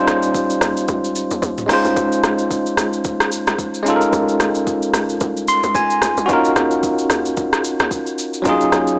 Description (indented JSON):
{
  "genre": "amapiano",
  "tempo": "111 BPM",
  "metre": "4/4",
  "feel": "swing 58% on 16ths",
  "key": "unclear",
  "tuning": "A4 = 440 Hz",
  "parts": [
    { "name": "bell-like tine electric piano", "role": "accompaniment", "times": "0.0-9.0 s", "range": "Gb3 to C6", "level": "-16 LUFS", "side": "equal", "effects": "medium stereo tremolo" },
    { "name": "tight log drum bass", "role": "bass", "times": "0.0-9.0 s", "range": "C2 to F2", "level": "-25 LUFS", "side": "equal", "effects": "none" },
    { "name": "smooth R&B drum kit", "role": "drums", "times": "0.1-9.0 s", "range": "hi-hat, kick drum, rim click, shaker, toms", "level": "-21 LUFS", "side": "equal", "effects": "soft clipping on snare" }
  ],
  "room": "light reverb",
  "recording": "blown-out, overdriven recording, overdrive, small speaker sound",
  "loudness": "-15 LUFS",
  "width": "side -30 dB against mid",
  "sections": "0.0-9.0 A section",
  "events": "tine electric piano fill 5.2-6.3",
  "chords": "0.0 Eb13; 1.7 Dbmaj9; 6.3 Ebm9"
}